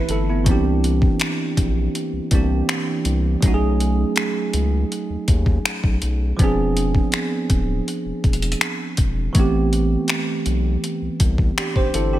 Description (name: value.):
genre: contemporary R&B.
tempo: 81 BPM.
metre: 4/4.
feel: straight.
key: unclear.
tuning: A4 = 440 Hz.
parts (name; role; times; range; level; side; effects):
bell-like tine electric piano; accompaniment; 0.0-12.2 s; E3 to C5; -22 LUFS; right 2 dB; lush chorus.
saturated sub bass; bass; 0.0-12.2 s; D1 to D#2; -21 LUFS; equal; none.
detuned 8-bit digital drum machine; drums; 0.1-12.1 s; finger snaps, hi-hat, kick drum; -20 LUFS; left 1 dB; overdrive.
room: little or no reverb.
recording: none.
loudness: -18 LUFS.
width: side -14 dB against mid.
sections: 0.0-12.2 A section.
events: none.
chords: 0.5 C9; 3.4 B13; 6.4 E7b9b13; 9.3 Am9.